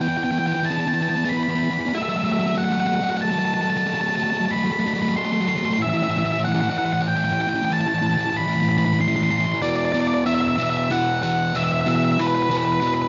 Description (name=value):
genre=rock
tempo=94 BPM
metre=3/4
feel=straight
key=E minor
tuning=A4 = 440 Hz
part: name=octave-fuzz lead guitar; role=melody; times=0.0-13.1 s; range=B4 to C6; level=-25 LUFS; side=equal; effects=distortion, tape echo
part: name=crunchy overdriven guitar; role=riff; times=0.0-13.1 s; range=E2 to B3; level=-24 LUFS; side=equal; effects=none
room=moderate large studio reverb, RT60 1.0 s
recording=dark, warm production, nothing above 7.5 kHz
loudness=-21 LUFS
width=mono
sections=0.0-9.6 A section; 9.6-13.1 B section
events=build-up 0.0-9.6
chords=0.0 Em; 1.9 F#m; 5.8 A5; 9.6 E5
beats=| 0.01 0.66 1.30 | 1.94 2.58 3.22 | 3.86 4.50 5.15 | 5.79 6.43 7.07 | 7.71 8.35 8.99 | 9.63 10.27 10.90 | 11.54 12.18 12.82